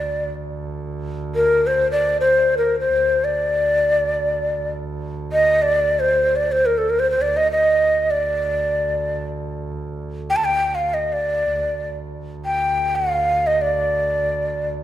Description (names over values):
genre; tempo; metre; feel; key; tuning
Arabic maqam ensemble; free time; none; none; D maqam kurd; A4 = 440 Hz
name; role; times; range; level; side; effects
breathy ney; melody; 0.0-14.7 s; A4 to A5; -17 LUFS; equal; none
warm double bass; drone; 0.0-14.8 s; D2; -30 LUFS; right 2 dB; none
room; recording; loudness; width
moderate scoring stage reverb, RT60 1.7 s; minimal, uncompressed stereo recording; -17 LUFS; side -12 dB against mid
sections
0.0-14.8 A section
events
none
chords
none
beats
free time